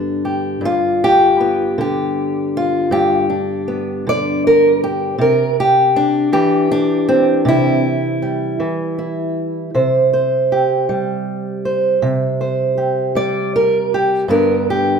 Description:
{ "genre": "acoustic country blues, solo or duo", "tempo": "53 BPM (dotted quarters)", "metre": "12/8", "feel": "straight", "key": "unclear", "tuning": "A4 = 439 Hz", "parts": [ { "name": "fingerpicked old ladder-braced acoustic guitar", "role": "solo", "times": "0.0-15.0 s", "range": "G2 to D5", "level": "-14 LUFS", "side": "equal", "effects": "none" } ], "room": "moderate recital hall reverb, RT60 1.7 s", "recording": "recorded in a church or concert hall", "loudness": "-14 LUFS", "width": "side -6 dB against mid", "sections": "0.0-15.0 A section", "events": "none", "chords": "0.0 G; 5.2 C; 14.3 G" }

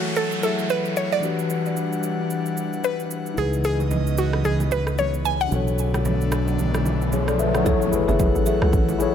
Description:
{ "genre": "amapiano", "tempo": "112 BPM", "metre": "4/4", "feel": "swing 58% on 16ths", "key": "F# minor", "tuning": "A4 = 439 Hz", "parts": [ { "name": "mallet-like synth pluck", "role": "melody", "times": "0.0-6.4 s", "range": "F#4 to G#5", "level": "-26 LUFS", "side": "equal", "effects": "chorus, tape echo" }, { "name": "mellow tine electric piano", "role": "accompaniment", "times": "0.0-9.1 s", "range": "E3 to G#5", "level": "-26 LUFS", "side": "left 6 dB", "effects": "none" }, { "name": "airy breathy pad", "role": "sustained chords", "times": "0.0-9.1 s", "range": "C#3 to F#5", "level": "-28 LUFS", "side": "equal", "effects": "chorus" }, { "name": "downlifter, riser and impact", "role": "sound effects", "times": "0.0-9.1 s", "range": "none", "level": "-31 LUFS", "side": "right 2 dB", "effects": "none" }, { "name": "afro-pop drum kit", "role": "drums", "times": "0.2-9.1 s", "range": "kick drum, rim click, shaker", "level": "-27 LUFS", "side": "right 1 dB", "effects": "none" }, { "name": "fingered electric bass", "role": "bass", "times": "3.4-7.6 s", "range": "B1 to C#2", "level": "-24 LUFS", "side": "right 1 dB", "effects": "none" }, { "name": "congas and bongos", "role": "percussion", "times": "3.4-9.1 s", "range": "none", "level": "-31 LUFS", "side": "right 5 dB", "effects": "none" }, { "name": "buzzing marimba with medium mallets", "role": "stabs", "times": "7.7-8.7 s", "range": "G#4 to E5", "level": "-28 LUFS", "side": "right 4 dB", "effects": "tape echo" }, { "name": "hollow log drum bass", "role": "bass", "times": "8.1-9.1 s", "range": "F#1 to C#2", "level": "-23 LUFS", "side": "equal", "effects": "none" } ], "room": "light reverb", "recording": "none", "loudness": "-20 LUFS", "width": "side -9 dB against mid", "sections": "0.0-7.7 A section; 7.7-9.1 B section", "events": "riser 5.0-7.7; impact 7.7-9.1", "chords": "0.0 F#m9; 1.2 Em9; 3.4 C#m9; 5.5 Bm9; 7.7 F#m9" }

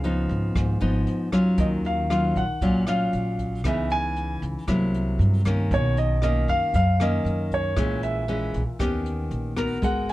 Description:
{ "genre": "bossa nova", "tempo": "116 BPM", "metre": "4/4", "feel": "straight", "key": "Eb minor", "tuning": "A4 = 439 Hz", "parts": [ { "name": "warm concert grand piano", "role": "melody", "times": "0.0-10.1 s", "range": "C#5 to Ab5", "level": "-27 LUFS", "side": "equal", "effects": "none" }, { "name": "nylon-string guitar", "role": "accompaniment", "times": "0.0-10.1 s", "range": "F#2 to Bb4", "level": "-25 LUFS", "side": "left 1 dB", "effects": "none" }, { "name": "upright bass", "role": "bass", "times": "0.0-10.1 s", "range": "G#1 to G2", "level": "-26 LUFS", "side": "equal", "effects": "none" }, { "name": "jazz brush drum kit", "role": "drums", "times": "0.0-10.1 s", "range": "hi-hat, kick drum, rim click", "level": "-31 LUFS", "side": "equal", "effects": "none" } ], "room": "light reverb", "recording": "dark, warm production", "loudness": "-21 LUFS", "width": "side -17 dB against mid", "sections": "0.0-1.6 A section; 1.6-10.1 B section", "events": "none", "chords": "0.0 C#9; 1.6 Ebm9; 3.6 Dbm9; 4.7 C7#11; 5.7 Bmaj9; 7.8 Bbm7b5; 8.8 Eb7b13" }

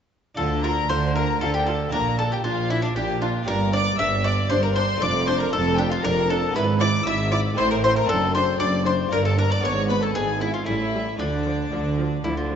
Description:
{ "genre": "classical, baroque-style concerto movement with solo episodes", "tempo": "116 BPM", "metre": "3/4", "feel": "straight", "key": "D minor", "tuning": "A4 = 440 Hz", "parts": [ { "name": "harpsichord", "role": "accompaniment", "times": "0.3-12.6 s", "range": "F2 to A4", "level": "-31 LUFS", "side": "left 1 dB", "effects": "none" }, { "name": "bowl-back mandolin", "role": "melody", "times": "0.4-12.6 s", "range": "D4 to E5", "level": "-27 LUFS", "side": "left 2 dB", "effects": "none" }, { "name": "warm chamber violin section", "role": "melody", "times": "0.4-12.5 s", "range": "D5 to E6", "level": "-29 LUFS", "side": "left 4 dB", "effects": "none" }, { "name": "warm chamber violin section", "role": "second line", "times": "0.4-12.5 s", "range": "D4 to E5", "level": "-27 LUFS", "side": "left 3 dB", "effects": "none" }, { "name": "warm chamber viola section", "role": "accompaniment", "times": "0.4-12.6 s", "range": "F3 to F4", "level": "-32 LUFS", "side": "right 2 dB", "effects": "none" }, { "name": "warm chamber cello section", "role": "bass", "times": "0.4-12.6 s", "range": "F2 to D3", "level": "-27 LUFS", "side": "right 4 dB", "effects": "none" }, { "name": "warm chamber double bass section", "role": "bass", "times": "0.4-12.6 s", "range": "F1 to D2", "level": "-26 LUFS", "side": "right 1 dB", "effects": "none" } ], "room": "wet scoring stage reverb, RT60 1.5 s", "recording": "nothing above 7.8 kHz", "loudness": "-20 LUFS", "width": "side -8 dB against mid", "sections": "0.4-12.6 A section", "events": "none", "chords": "0.4 Dm; 1.9 Bb; 3.5 Gm; 5.0 Dm/F; 6.5 E7/G#; 7.6 Am; 8.1 D7/F#; 9.1 Gm; 9.6 G#dim; 10.7 A7; 11.2 Dm" }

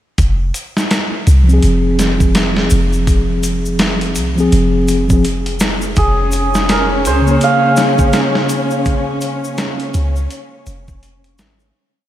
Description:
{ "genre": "trip hop", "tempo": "83 BPM", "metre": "4/4", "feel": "swing 60% on 16ths", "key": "F minor", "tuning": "A4 = 440 Hz", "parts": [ { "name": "soft 808-style bass", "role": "bass", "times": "0.2-11.7 s", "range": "F1 to Db2", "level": "-15 LUFS", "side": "equal", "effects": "none" }, { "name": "dusty soul sampler-style drum kit", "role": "drums", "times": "0.2-11.6 s", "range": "hi-hat, kick drum, snare drum", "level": "-17 LUFS", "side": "equal", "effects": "none" }, { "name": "tube shaker", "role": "percussion", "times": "0.2-11.7 s", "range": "none", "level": "-31 LUFS", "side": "left 3 dB", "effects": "none" }, { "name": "mellow tine electric piano", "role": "accompaniment", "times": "1.4-10.1 s", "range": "Db3 to Ab4", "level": "-17 LUFS", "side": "equal", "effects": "medium stereo tremolo, low-pass filter, tape echo" }, { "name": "hammered dulcimer", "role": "melody", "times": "6.0-11.0 s", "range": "Ab4 to F5", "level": "-17 LUFS", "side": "right 2 dB", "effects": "vintage 12-bit sampler grit, tape echo" }, { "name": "dark studio string section", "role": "sustained chords", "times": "6.0-11.8 s", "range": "Db4", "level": "-21 LUFS", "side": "left 2 dB", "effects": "none" }, { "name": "flickering grainy texture", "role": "texture", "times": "6.2-11.8 s", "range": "Db4", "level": "-26 LUFS", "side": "right 2 dB", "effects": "none" } ], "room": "moderate huge ambient reverb, RT60 7.4 s", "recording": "dreamy mix soaked in reverb, vinyl crackle", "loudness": "-12 LUFS", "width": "side -12 dB against mid", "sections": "0.2-11.8 groove", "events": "fade-out 7.9-11.8", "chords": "0.2 Fm; 6.0 Bbm7/F" }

